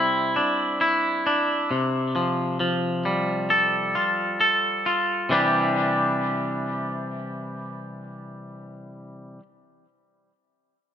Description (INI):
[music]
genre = rock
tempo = 67 BPM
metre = 4/4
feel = straight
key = C major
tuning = A4 = 440 Hz
[part]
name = twangy electric guitar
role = arpeggios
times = 0.0-9.4 s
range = C3 to A4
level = -22 LUFS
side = equal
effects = digital delay
[sound]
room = moderate large studio reverb, RT60 1.3 s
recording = none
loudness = -21 LUFS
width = side -8 dB against mid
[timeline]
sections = 0.0-5.3 A section; 5.3-8.9 B section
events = none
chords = 0.0 Cadd9; 1.7 Fadd9/C; 5.3 Cadd9